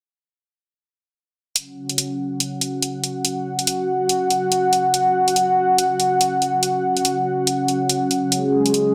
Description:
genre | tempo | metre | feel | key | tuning
deep dubstep | 142 BPM | 4/4 | swing 60% on 16ths, half-time | unclear | A4 = 440 Hz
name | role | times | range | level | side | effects
dark analog pad | sustained chords | 1.6-8.9 s | C#4 to F#5 | -21 LUFS | equal | chorus
electronic hi-hat | drums | 1.6-8.8 s | none | -23 LUFS | equal | overdrive, studio reverb
room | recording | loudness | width
wet echo chamber reverb, RT60 1.8 s, digital ambience | none | -20 LUFS | mono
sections
1.6-8.9 A section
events
none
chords
1.6 F#5

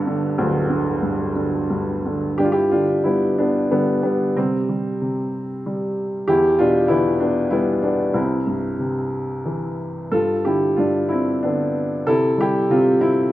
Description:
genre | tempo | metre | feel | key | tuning
classical, lyrical solo piano | 85-98 BPM | 3/4 | rubato | C major | A4 = 441 Hz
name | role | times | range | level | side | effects
warm upright piano | solo | 0.0-13.3 s | D1 to A4 | -18 LUFS | equal | none
room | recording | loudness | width
moderate recital hall reverb, RT60 1.4 s | none | -18 LUFS | side -14 dB against mid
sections
0.0-2.4 A section; 2.4-13.3 B section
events
none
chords
0.0 G; 4.4 C5; 6.3 Em; 8.1 C; 10.1 G7; 12.1 C

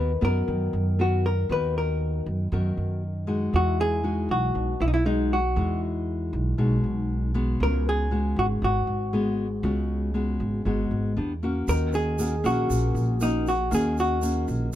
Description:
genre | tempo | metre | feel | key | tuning
bossa nova | 118 BPM | 4/4 | straight | unclear | A4 = 440 Hz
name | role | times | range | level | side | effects
vintage hollow-body jazz guitar | melody | 0.0-14.5 s | D#4 to B4 | -27 LUFS | left 1 dB | none
nylon-string guitar | accompaniment | 0.0-14.8 s | Ab2 to A#4 | -27 LUFS | left 2 dB | none
upright bass | bass | 0.0-14.7 s | Ab1 to F#2 | -26 LUFS | right 1 dB | none
egg shaker | percussion | 11.7-14.7 s | none | -42 LUFS | right 6 dB | none
warm grand piano | accompaniment | 12.2-14.8 s | Ab4 | -36 LUFS | right 3 dB | none
room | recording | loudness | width
little or no reverb | none | -23 LUFS | side -12 dB against mid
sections
0.0-14.8 A section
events
none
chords
0.0 Bmaj7/D#; 3.5 Emaj9; 7.6 Db7sus4; 11.2 Em7; 11.7 Ebm7

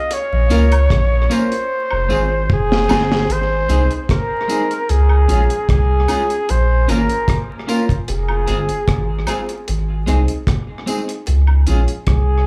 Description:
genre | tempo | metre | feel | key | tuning
roots reggae | 75 BPM | 4/4 | straight | unclear | A4 = 440 Hz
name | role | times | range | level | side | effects
warm flugelhorn | melody | 0.0-12.5 s | F4 to Eb5 | -23 LUFS | equal | dub echo, plate reverb
deep reggae drum kit | drums | 0.1-12.3 s | hi-hat, kick drum, rim click, snare drum | -22 LUFS | equal | tape echo
soft dub sub bass | bass | 0.3-12.4 s | F1 to Db2 | -18 LUFS | equal | none
clean electric guitar | accompaniment | 0.5-11.8 s | Ab3 to Bb4 | -27 LUFS | equal | tremolo, dub echo, plate reverb, slapback echo
clear upright piano | stabs | 0.5-11.9 s | C4 to Bb4 | -29 LUFS | equal | plate reverb, slapback echo
tambourine and woodblock | percussion | 0.5-11.9 s | none | -31 LUFS | equal | slapback echo
room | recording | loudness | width
light reverb | live gig heard through the venue's PA, club reverb, vinyl crackle | -17 LUFS | mono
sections
0.0-3.3 A section; 3.3-12.5 B section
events
drum fill 1.7-3.3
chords
0.1 Bbm; 1.7 Fm; 3.3 Ab; 4.9 Db; 6.5 Bbm; 8.1 Fm; 9.7 Ab; 11.3 Db

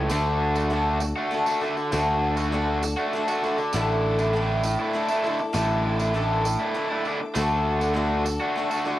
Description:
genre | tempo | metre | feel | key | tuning
folk rock and heartland rock | 99 BPM | 3/4 | straight | D major | A4 = 440 Hz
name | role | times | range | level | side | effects
picked steel-string acoustic guitar | accompaniment | 0.0-9.0 s | A2 to C#5 | -27 LUFS | left 2 dB | none
raw garage guitar | riff | 0.0-9.0 s | A2 to F#4 | -25 LUFS | right 1 dB | overdrive
picked electric bass | bass | 0.0-8.4 s | A1 to D2 | -26 LUFS | equal | none
warm studio string section | sustained chords | 0.1-9.0 s | A4 to D6 | -39 LUFS | equal | none
tambourine | percussion | 0.1-8.9 s | none | -39 LUFS | right 5 dB | none
room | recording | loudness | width
light reverb | home recording on cassette | -22 LUFS | side -14 dB against mid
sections
0.1-9.0 A section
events
none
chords
0.1 D; 3.7 Asus4; 7.4 D

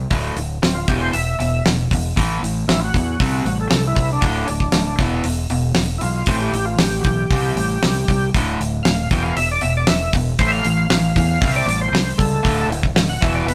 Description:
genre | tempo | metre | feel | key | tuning
classic rock | 117 BPM | 4/4 | straight | unclear | A4 = 440 Hz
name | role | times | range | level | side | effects
overdriven electric guitar | riff | 0.0-13.5 s | D2 to C4 | -26 LUFS | equal | none
growling fingered electric bass | bass | 0.0-13.5 s | D1 to E2 | -24 LUFS | equal | overdrive
damped 70s drum kit | drums | 0.1-13.5 s | hi-hat, kick drum, snare drum | -22 LUFS | equal | none
overdriven tonewheel organ | melody | 0.7-13.5 s | C4 to G5 | -25 LUFS | equal | slow rotary speaker, chorus vibrato
room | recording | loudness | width
light reverb | rough rehearsal-room recording, tube saturation | -19 LUFS | mono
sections
0.0-13.5 A section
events
tonewheel organ solo 0.0-13.5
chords
0.1 D5; 0.9 E5; 2.2 A5; 3.2 C5; 4.2 D5; 5.0 E5; 6.3 A5; 7.3 C5; 8.3 D5; 9.1 E5; 10.4 A5; 11.4 C5; 12.5 D5

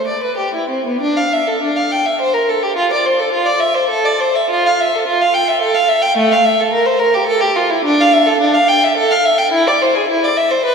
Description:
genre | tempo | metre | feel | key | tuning
classical, baroque-style suite movement for unaccompanied violin | 106 BPM | 3/4 | uneven beats, rubato | D minor | A4 = 440 Hz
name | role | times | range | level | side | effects
rich violin | solo | 0.0-10.7 s | A3 to G5 | -12 LUFS | equal | none
room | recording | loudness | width
wet church reverb, RT60 3.5 s | none | -12 LUFS | side -5 dB against mid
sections
0.0-1.0 A section; 1.0-10.7 A section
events
none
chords
none

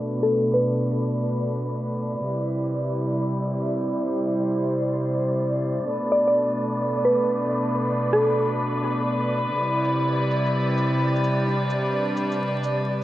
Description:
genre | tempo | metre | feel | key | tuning
future garage | 129 BPM | 4/4 | swing 64% on 16ths | unclear | A4 = 440 Hz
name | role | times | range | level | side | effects
warm chamber string section | sustained chords | 0.0-13.0 s | B2 to C5 | -23 LUFS | equal | none
shaker | drums | 0.0-12.8 s | none | -52 LUFS | left 1 dB | none
wind-like tuned noise texture | texture | 0.0-13.0 s | D5 | -31 LUFS | right 1 dB | built-in reverb
mallet-like synth pluck | melody | 0.2-1.2, 6.1-8.4 s | A4 to D5 | -24 LUFS | equal | chorus, cassette tape, analog delay
room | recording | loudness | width
moderate lush hall reverb, RT60 1.6 s | dry, gritty hardware recording, vinyl crackle, low-pass filter | -21 LUFS | side -14 dB against mid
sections
0.0-13.0 A section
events
filter sweep 0.0-13.0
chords
0.0 Bm7; 2.2 Cmaj9; 5.9 Bm7; 9.6 Cmaj9

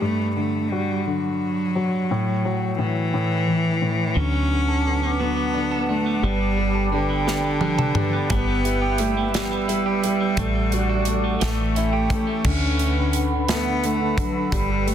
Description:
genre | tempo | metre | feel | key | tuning
six-eight pop ballad | 58 BPM (dotted quarters) | 6/8 | straight | D major | A4 = 441 Hz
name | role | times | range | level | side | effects
clear cello | melody | 0.0-14.9 s | D3 to C#4 | -24 LUFS | right 1 dB | none
clear baby grand piano | accompaniment | 0.0-14.9 s | G2 to F#4 | -26 LUFS | left 4 dB | none
sweeping resonant pad | sustained chords | 4.5-14.9 s | A4 to E6 | -29 LUFS | right 2 dB | chorus, phaser
clean electric guitar | arpeggios | 4.2-13.0 s | E3 to A4 | -29 LUFS | right 10 dB | none
deep dub fingered electric bass | bass | 4.2-14.9 s | G1 to D2 | -25 LUFS | equal | none
modern studio drum kit | drums | 7.3-14.9 s | crash cymbal, hi-hat, kick drum, snare drum, toms | -26 LUFS | right 1 dB | none
room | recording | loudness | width
light reverb, small room ambience | dense, heavily limited modern master | -20 LUFS | side -9 dB against mid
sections
0.0-4.2 A section; 4.2-12.5 B section; 12.5-14.9 C section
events
drum fill 7.3-8.3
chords
0.0 G5; 2.1 F#m7/A; 3.1 A5; 4.2 D6; 6.2 Gadd9; 8.3 Em/G; 10.4 D/A; 11.4 A7; 12.5 D6

